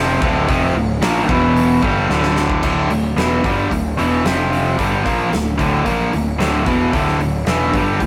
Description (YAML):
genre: hard rock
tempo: 112 BPM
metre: 4/4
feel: straight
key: D minor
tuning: A4 = 441 Hz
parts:
  - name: biting overdriven guitar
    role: riff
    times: 0.0-8.1 s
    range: D2 to Bb3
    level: -20 LUFS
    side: equal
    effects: none
  - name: cranked stack guitar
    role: riff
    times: 0.0-8.1 s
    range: D2 to Bb3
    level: -23 LUFS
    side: equal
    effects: overdrive
  - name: fuzz picked electric bass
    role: bass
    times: 0.0-8.1 s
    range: D1 to Bb1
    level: -24 LUFS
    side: equal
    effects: overdrive
  - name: huge arena drum kit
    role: drums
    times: 0.2-8.1 s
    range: crash cymbal, hi-hat, kick drum, snare drum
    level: -25 LUFS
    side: equal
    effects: none
room: moderate stone room reverb, RT60 1.3 s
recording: rough rehearsal-room recording, warm saturation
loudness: -17 LUFS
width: mono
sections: 0.0-2.6 A section; 2.6-8.1 B section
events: drum fill 2.1-2.6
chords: 0.0 Dm; 1.3 E5; 1.8 D5; 4.2 F5; 4.8 Dm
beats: | 0.48 1.02 1.56 2.10 | 2.63 3.17 3.71 4.25 | 4.78 5.32 5.86 6.39 | 6.93 7.47 8.01